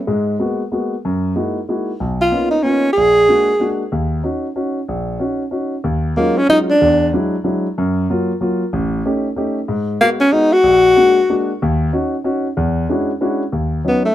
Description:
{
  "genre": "jazz",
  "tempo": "188 BPM",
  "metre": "3/4",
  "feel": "swing 63% on 8ths",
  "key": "Eb minor",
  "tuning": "A4 = 440 Hz",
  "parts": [
    { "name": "warm grand piano", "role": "accompaniment", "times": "0.1-14.1 s", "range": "A1 to G4", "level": "-18 LUFS", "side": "equal", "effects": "none" },
    { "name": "breathy tenor saxophone", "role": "melody", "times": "2.2-3.7, 6.2-7.1, 10.0-11.5, 13.9-14.1 s", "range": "A3 to Ab4", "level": "-12 LUFS", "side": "equal", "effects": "none" }
  ],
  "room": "light reverb",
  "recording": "dark, warm production",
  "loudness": "-14 LUFS",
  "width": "side -12 dB against mid",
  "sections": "0.0-5.8 A section; 5.8-13.5 B section",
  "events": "none",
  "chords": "0.1 Abm9; 1.0 Gb13; 2.0 Bmaj9#11; 3.0 Bbaug7; 3.9 Ebm7; 5.8 Ebm11; 6.8 E9; 7.8 Gbmaj7; 8.7 A7#11; 9.7 Abm7; 10.6 Bbaug7; 11.6 Ebm7; 12.6 E13; 13.5 Ebm7"
}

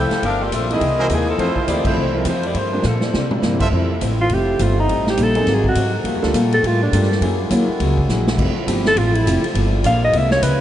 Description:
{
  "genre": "jazz, big band swing",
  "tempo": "206 BPM",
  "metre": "4/4",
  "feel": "swing 60% on 8ths",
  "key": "F major",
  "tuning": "A4 = 440 Hz",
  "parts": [
    { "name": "warm saxophone section", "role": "melody", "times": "0.0-3.6 s", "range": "E3 to G5", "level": "-23 LUFS", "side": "left 1 dB", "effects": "none" },
    { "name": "picked plugged-in steel-string acoustic guitar", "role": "accompaniment", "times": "0.0-10.6 s", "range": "F2 to A4", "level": "-26 LUFS", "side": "left 3 dB", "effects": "none" },
    { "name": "upright bass", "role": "bass", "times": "0.0-10.6 s", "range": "F1 to C3", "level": "-20 LUFS", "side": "equal", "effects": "none" },
    { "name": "swinging big-band drum kit", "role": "drums", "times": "0.1-10.5 s", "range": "crash cymbal, hi-hat, kick drum, ride cymbal, snare drum, toms", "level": "-24 LUFS", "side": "equal", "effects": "none" },
    { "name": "warm baby grand piano", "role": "accompaniment", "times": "0.7-10.1 s", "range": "E3 to A4", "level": "-27 LUFS", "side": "right 3 dB", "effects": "none" },
    { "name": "clear trumpet section", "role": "stabs", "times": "1.0-3.7 s", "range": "E4 to E5", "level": "-29 LUFS", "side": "right 1 dB", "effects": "none" },
    { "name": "warm saxophone section", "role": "sustained chords", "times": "3.7-10.6 s", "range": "C3 to G4", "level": "-27 LUFS", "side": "equal", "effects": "none" },
    { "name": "breathy alto saxophone", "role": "melody", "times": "4.2-10.6 s", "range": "D4 to F5", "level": "-20 LUFS", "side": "equal", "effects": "none" }
  ],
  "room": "wet cathedral reverb, RT60 6.3 s",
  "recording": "in a vast, echoing space, nothing above 10.4 kHz",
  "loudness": "-15 LUFS",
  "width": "side -12 dB against mid",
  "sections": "0.0-3.7 A section; 3.7-10.6 B section",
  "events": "band accent 1.8; drum fill 2.8-3.4, 8.1; alto saxophone solo 3.7-10.6",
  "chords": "0.2 Gm7; 0.8 C7alt; 1.4 Fmaj7; 2.6 Gm7; 3.1 C9; 3.7 Fmaj7; 4.9 Am7b5; 5.5 Ab9; 6.1 Gm9; 7.2 Gb9; 8.4 Fmaj9; 9.5 Gm7"
}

